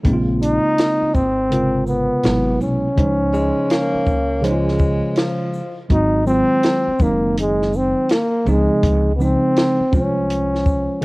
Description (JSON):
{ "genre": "hip hop, jazz-hop", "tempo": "82 BPM", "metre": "4/4", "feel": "swing 64% on 16ths", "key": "Db major", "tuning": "A4 = 439 Hz", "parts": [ { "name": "mellow tine electric piano", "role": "accompaniment", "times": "0.0-11.0 s", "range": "B2 to C5", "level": "-20 LUFS", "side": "right 1 dB", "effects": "medium stereo tremolo, cassette tape" }, { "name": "upright bass", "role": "bass", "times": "0.0-11.0 s", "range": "Gb1 to Db2", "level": "-24 LUFS", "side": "equal", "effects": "none" }, { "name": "compact cocktail drum kit", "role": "drums", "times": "0.0-11.0 s", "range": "hi-hat, kick drum, shaker, snare drum", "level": "-19 LUFS", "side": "equal", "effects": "cassette tape" }, { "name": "breathy trombone", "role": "melody", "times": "0.4-11.0 s", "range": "Ab3 to Eb4", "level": "-19 LUFS", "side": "equal", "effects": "cassette tape" }, { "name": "breathy tenor saxophone", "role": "second line", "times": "3.3-5.9 s", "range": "F3 to Bb3", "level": "-24 LUFS", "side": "left 1 dB", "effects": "cassette tape" } ], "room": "small room ambience", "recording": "home recording on cassette", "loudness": "-15 LUFS", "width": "side -23 dB against mid", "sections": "0.0-5.9 A section; 5.9-11.0 B section", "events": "tine electric piano fill 10.7-11.0", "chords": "0.1 Bbm9; 2.2 Ab7alt; 3.0 Dbmaj9; 5.9 Ab7; 8.5 Dbmaj9", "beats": "| 0.05 0.78 1.51 2.25 | 2.98 3.71 4.44 5.17 | 5.90 6.63 7.37 8.10 | 8.83 9.56 10.29 11.03" }